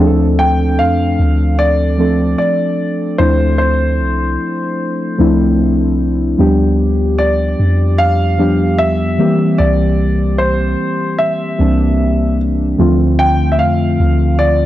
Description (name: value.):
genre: contemporary R&B.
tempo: 75 BPM.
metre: 4/4.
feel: swing 54% on 16ths.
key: D minor.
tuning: A4 = 439 Hz.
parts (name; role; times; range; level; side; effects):
muted felt-like synth keys; accompaniment; 0.0-14.7 s; D3 to A4; -15 LUFS; left 1 dB; chorus.
soft 808-style bass; bass; 0.0-14.7 s; C2 to F2; -15 LUFS; equal; none.
warm concert grand piano; melody; 0.4-14.7 s; C5 to G5; -18 LUFS; equal; tape echo.
room: light reverb, studio reverb.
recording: dry, gritty hardware recording, transformer saturation.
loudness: -11 LUFS.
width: side -14 dB against mid.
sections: 0.0-14.7 A section.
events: none.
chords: 0.0 Dm7; 6.4 G7/D; 9.2 C7; 12.8 Dm7.